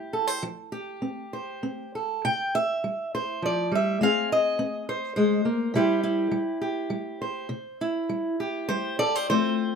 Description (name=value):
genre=folk, solo fingerstyle acoustic guitar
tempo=102 BPM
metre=3/4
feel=rubato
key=unclear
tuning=A4 = 441 Hz
part: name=fingerpicked steel-string acoustic guitar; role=solo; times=0.0-9.8 s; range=C3 to G5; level=-24 LUFS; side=equal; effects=none
room=light reverb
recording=minimal, uncompressed stereo recording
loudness=-24 LUFS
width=side -6 dB against mid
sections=0.0-9.3 A section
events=none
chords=0.4 Fsus2; 2.2 C; 4.0 Ab; 5.7 C